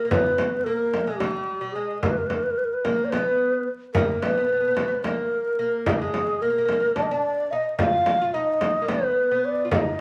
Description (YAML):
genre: Turkish makam ensemble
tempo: 218 BPM (eighths)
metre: 7/8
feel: straight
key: Bb makam hicaz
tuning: A4 = 441 Hz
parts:
  - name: breathy low ney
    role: melody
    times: 0.0-10.0 s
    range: G4-46c to F5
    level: -25 LUFS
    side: equal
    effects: none
  - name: oud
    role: second line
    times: 0.0-10.0 s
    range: G3-40c to F4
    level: -33 LUFS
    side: equal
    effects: none
  - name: frame drum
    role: percussion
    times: 0.1-9.8 s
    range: none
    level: -28 LUFS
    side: equal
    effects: none
room: moderate large studio reverb, RT60 1.1 s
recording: vinyl crackle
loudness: -24 LUFS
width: mono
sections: 0.1-10.0 A section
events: none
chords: none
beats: | 0.11 0.38 0.66 0.93 1.21 1.48 1.75 | 2.03 2.30 2.58 2.85 3.13 3.40 3.67 | 3.95 4.22 4.50 4.77 5.05 5.32 5.60 | 5.87 6.15 6.42 6.70 6.97 7.24 7.52 | 7.79 8.07 8.34 8.62 8.89 9.17 9.44 | 9.71 9.99